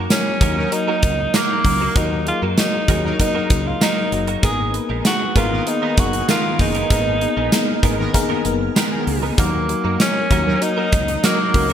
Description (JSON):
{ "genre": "1980s-style pop", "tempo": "97 BPM", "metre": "4/4", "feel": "straight", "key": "Eb minor", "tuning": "A4 = 440 Hz", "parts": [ { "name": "FM electric piano", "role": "accompaniment", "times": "0.0-11.7 s", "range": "Gb3 to Ab5", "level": "-24 LUFS", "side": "left 4 dB", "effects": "chorus" }, { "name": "direct-recorded clean electric guitar", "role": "riff", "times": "0.0-11.7 s", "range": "Ab3 to Bb4", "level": "-29 LUFS", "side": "right 6 dB", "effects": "ensemble chorus, digital delay" }, { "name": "woody fretless electric bass", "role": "bass", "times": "0.0-11.7 s", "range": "Gb1 to Gb2", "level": "-24 LUFS", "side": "equal", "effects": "none" }, { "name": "warm tenor saxophone", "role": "melody", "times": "0.1-11.7 s", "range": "Bb3 to Ab4", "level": "-22 LUFS", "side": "right 1 dB", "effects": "digital delay" }, { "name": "gated 80s drum kit", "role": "drums", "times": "0.1-11.7 s", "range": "hi-hat, kick drum, snare drum, tambourine", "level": "-19 LUFS", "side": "equal", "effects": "gated reverb" }, { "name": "analog synth brass", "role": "stabs", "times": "0.6-11.7 s", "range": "Eb3 to Bb4", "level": "-27 LUFS", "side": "right 1 dB", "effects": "chorus, digital delay" }, { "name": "glassy FM pad", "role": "sustained chords", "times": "4.8-11.7 s", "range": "Cb4 to F6", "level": "-30 LUFS", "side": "left 3 dB", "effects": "ensemble chorus, built-in reverb" } ], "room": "moderate plate reverb, RT60 2.5 s", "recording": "bright 1980s-style digital production", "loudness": "-16 LUFS", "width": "side -9 dB against mid", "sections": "0.0-11.7 A section", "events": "none", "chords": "0.0 Ebm; 4.4 Abmadd9; 9.4 Ebm" }